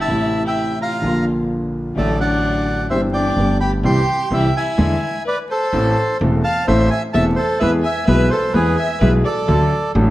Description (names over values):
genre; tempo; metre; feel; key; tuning
tango; 128 BPM; 4/4; rubato; A harmonic minor from 5.7 s; A4 = 440 Hz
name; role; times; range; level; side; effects
bandoneon; melody; 0.0-9.9 s; G#4 to C6; -20 LUFS; right 1 dB; none
warm violin; second line; 0.0-9.9 s; A3 to F5; -26 LUFS; left 4 dB; none
warm concert grand piano; accompaniment; 0.0-10.1 s; E1 to A4; -18 LUFS; equal; none
upright bass; bass; 0.0-10.1 s; E1 to E2; -22 LUFS; equal; none
room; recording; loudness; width
moderate recital hall reverb, RT60 1.4 s; vinyl crackle; -15 LUFS; side -16 dB against mid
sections
0.0-5.7 A section; 5.7-10.1 B section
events
band accent 3.8-5.7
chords
0.1 Am; 1.0 Bb; 2.0 D/A; 2.9 C/G; 3.4 Gadd9; 3.8 C; 4.8 E7; 5.7 Am; 7.6 E; 9.5 D